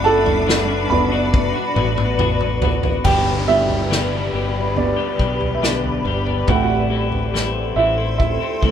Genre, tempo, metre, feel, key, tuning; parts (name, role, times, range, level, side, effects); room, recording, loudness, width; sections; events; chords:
pop ballad; 70 BPM; 4/4; straight; A4 = 440 Hz
rich studio cello section; second line; 0.0-2.6 s; D4; -27 LUFS; left 1 dB
warm upright piano; accompaniment; 0.0-8.7 s; G3 to B5; -21 LUFS; right 3 dB
granular cloud pad; sustained chords; 0.0-8.7 s; F#4 to C6; -23 LUFS; left 2 dB; built-in reverb
twelve-string electric guitar; arpeggios; 0.0-8.7 s; G2 to G4; -26 LUFS; left 8 dB
fretless electric bass; bass; 0.0-8.7 s; F#1 to C2; -24 LUFS; left 1 dB
unplugged drum kit; drums; 0.3-8.7 s; crash cymbal, kick drum, snare drum, toms; -22 LUFS; equal
downlifter; sound effects; 3.0-8.7 s; -30 LUFS; left 1 dB
moderate studio ambience, RT60 0.5 s; band playing live in one room; -16 LUFS; side -9 dB against mid
0.0-3.1 A section; 3.1-8.7 B section
upright piano solo 0.0-3.1, 3.1-8.7; drum fill 1.3-3.1
0.0 Bm/F#; 3.1 G; 6.5 Am